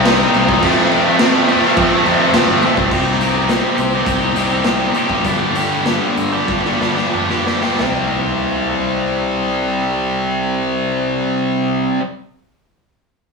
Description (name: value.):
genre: quiet-loud alternative rock.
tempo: 89-105 BPM.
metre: 4/4.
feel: straight.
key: C dorian.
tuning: A4 = 438 Hz.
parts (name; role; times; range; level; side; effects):
heavy high-gain guitar; riff; 0.0-12.0 s; F2 to G4; -15 LUFS; equal; distortion.
fuzz fingered electric bass; bass; 0.0-12.0 s; F1 to F3; -23 LUFS; left 1 dB; overdrive.
raw garage drum kit; drums; 0.1-8.0 s; crash cymbal, hi-hat, kick drum, snare drum, toms; -19 LUFS; equal; none.
room: moderate studio reverb, RT60 0.6 s.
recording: rough rehearsal-room recording, studio reverb.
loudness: -14 LUFS.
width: side -4 dB against mid.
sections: 0.0-2.9 A section; 2.9-7.8 B section; 7.8-10.5 C section.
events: slowing down 2.9-7.8; drum fill 6.5-7.8.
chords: 0.0 Cm; 0.6 F; 2.9 Cm; 5.3 G; 7.8 C5.